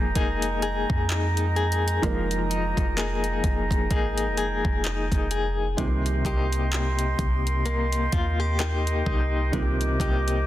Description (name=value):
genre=contemporary R&B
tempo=64 BPM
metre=4/4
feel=swing 58% on 16ths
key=unclear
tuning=A4 = 441 Hz
part: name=felt-muted upright piano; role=accompaniment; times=0.0-10.5 s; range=Eb3 to Bb4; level=-34 LUFS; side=right 4 dB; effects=none
part: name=clear woodwind section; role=sustained chords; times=0.0-10.5 s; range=Ab3 to D6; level=-30 LUFS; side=right 2 dB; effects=none
part: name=direct-recorded clean electric guitar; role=arpeggios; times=0.0-10.5 s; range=C3 to Ab4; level=-29 LUFS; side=left 5 dB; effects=tremolo, digital delay
part: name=clean 808-style bass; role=bass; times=0.0-10.4 s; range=F1 to F2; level=-26 LUFS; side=equal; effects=none
part: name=smooth R&B drum kit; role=drums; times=0.2-10.5 s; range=handclaps, hi-hat, kick drum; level=-27 LUFS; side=equal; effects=soft clipping on snare
room=digital ambience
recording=dense, heavily limited modern master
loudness=-22 LUFS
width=side -14 dB against mid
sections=0.0-5.8 A section; 5.8-10.5 B section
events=none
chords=0.0 Fm11; 5.8 Cm7